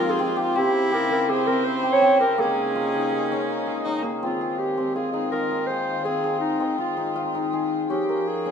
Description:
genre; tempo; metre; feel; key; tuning
contemporary instrumental, chamber music in an uneven meter; 164 BPM; 5/4; straight; F minor; A4 = 439 Hz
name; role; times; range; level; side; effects
warm clarinet; melody; 0.0-8.5 s; Eb4 to Db5; -24 LUFS; right 2 dB; none
clear viola; second line; 0.0-4.2 s; Bb3 to F4; -28 LUFS; right 4 dB; none
rich chamber string section; sustained chords; 0.0-8.5 s; Db3 to G5; -31 LUFS; equal; none
cimbalom; arpeggios; 0.0-8.5 s; Bb3 to Bb4; -24 LUFS; left 2 dB; none
room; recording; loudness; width
moderate studio reverb, RT60 0.8 s; minimal, uncompressed stereo recording; -21 LUFS; side -7 dB against mid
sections
0.0-4.2 A section; 4.2-8.5 B section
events
none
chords
0.0 Fm9; 0.6 C7b9; 2.4 Eb7sus4; 4.2 Fm7; 7.9 Gm7b5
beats
0.19 | 0.56 0.93 1.29 1.66 2.02 | 2.39 2.76 3.12 3.49 3.86 | 4.22 4.59 4.96 5.33 5.69 | 6.06 6.43 6.79 7.16 7.53 | 7.90 8.26

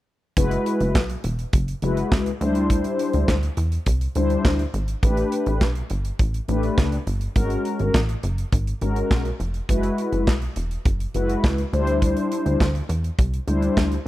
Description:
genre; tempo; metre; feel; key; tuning
early-eighties boogie funk; 103 BPM; 4/4; straight; unclear; A4 = 438 Hz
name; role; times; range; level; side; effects
mellow synth brass; accompaniment; 0.4-14.0 s; F#3 to C5; -23 LUFS; left 2 dB; chorus
plucky analog bass; bass; 0.4-14.1 s; E1 to E2; -24 LUFS; equal; none
modern studio drum kit; drums; 0.4-14.1 s; handclaps, hi-hat, kick drum, snare drum; -22 LUFS; equal; none
room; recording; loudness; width
studio reverb; dry, close 1970s-style studio recording; -20 LUFS; side -15 dB against mid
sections
0.4-14.1 A section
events
none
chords
0.4 F#9sus4; 2.4 D9sus4; 5.0 A9sus4; 7.4 G#9sus4; 9.7 F#9sus4; 11.7 D9sus4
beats
| 0.37 0.95 1.53 2.12 | 2.70 3.28 3.86 4.45 | 5.03 5.61 6.19 6.78 | 7.36 7.94 8.53 9.11 | 9.69 10.27 10.86 11.44 | 12.02 12.60 13.19 13.77

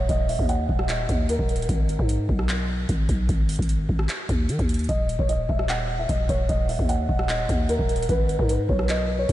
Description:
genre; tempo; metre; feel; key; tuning
hip hop, trap; 150 BPM; 4/4; half-time; Eb phrygian; A4 = 439 Hz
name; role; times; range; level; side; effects
felt-muted upright piano; melody; 0.0-1.7, 4.9-9.3 s; Bb4 to Gb5; -27 LUFS; right 1 dB; low-pass filter, analog delay
growling 808-style bass; bass; 0.0-9.3 s; Eb1 to Eb3; -25 LUFS; equal; none
booming analog drum machine; drums; 0.1-9.3 s; handclaps, hi-hat, kick drum, rim click; -25 LUFS; equal; overdrive
room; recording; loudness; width
moderate huge ambient reverb, RT60 7.0 s; dreamy mix soaked in reverb, nothing above 10.6 kHz; -21 LUFS; side -14 dB against mid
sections
0.0-9.3 A section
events
none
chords
0.0 Ebm; 1.7 Abm; 4.9 Ebm; 8.1 Abm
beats
| 0.09 0.49 0.89 1.29 | 1.69 2.09 2.49 2.89 | 3.29 3.69 4.09 4.49 | 4.89 5.29 5.69 6.09 | 6.49 6.89 7.29 7.69 | 8.09 8.49 8.89 9.29

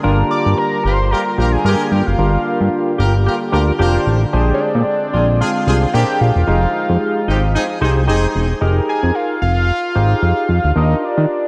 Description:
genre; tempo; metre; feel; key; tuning
funk; 112 BPM; 4/4; swing 56% on 16ths; F dorian; A4 = 442 Hz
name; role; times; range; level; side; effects
barky tine electric piano; accompaniment; 0.0-11.5 s; D4 to C5; -23 LUFS; equal; overdrive, analog chorus
warm analog pad; sustained chords; 0.0-8.6 s; D3 to G5; -28 LUFS; equal; chorus
fat analog bass; bass; 0.0-11.3 s; E1 to Eb3; -17 LUFS; equal; none
fat analog lead; melody; 0.3-11.5 s; Db5 to D6; -23 LUFS; equal; tape echo
warm horn section; second line; 0.8-8.3 s; C4 to Bb4; -26 LUFS; equal; tape echo
room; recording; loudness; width
wet lush hall reverb, RT60 2.8 s; dreamy mix soaked in reverb; -16 LUFS; mono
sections
0.0-8.6 A section; 8.6-11.5 B section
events
none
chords
0.0 Gm7; 4.3 Bb13; 6.5 Fm9; 8.6 Fm11; 10.8 Ebmaj9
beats
| 0.04 0.58 1.11 1.65 | 2.18 2.72 3.26 3.79 | 4.33 4.86 5.40 5.93 | 6.47 7.01 7.54 8.08 | 8.61 9.15 9.68 10.22 | 10.76 11.29

